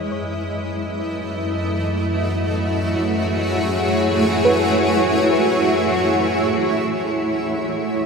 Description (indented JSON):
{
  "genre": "ambient",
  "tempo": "free time",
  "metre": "none",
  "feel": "none",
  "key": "unclear",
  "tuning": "A4 = 437 Hz",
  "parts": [
    { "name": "granular cloud pad", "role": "sustained chords", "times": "0.0-8.1 s", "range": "G#3 to D#5", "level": "-18 LUFS", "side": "equal", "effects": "built-in reverb" },
    { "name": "soft round pluck", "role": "arpeggios", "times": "0.0-6.7 s", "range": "B4 to C#5", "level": "-25 LUFS", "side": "right 1 dB", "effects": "chorus, ping-pong delay" },
    { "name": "rich studio double bass section", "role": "bass", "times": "0.0-8.1 s", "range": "E2 to F#2", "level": "-27 LUFS", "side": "equal", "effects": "tube saturation" },
    { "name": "clear chamber violin section", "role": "texture", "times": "7.0-8.1 s", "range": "G#6", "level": "-45 LUFS", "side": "equal", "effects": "none" }
  ],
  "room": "wet huge ambient reverb, RT60 8.2 s",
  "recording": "none",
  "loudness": "-17 LUFS",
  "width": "side -5 dB against mid",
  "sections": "0.0-7.1 A section; 7.1-8.1 B section",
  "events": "fade-out on double bass section 0.0-7.1",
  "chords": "0.1 F#m9; 7.1 E"
}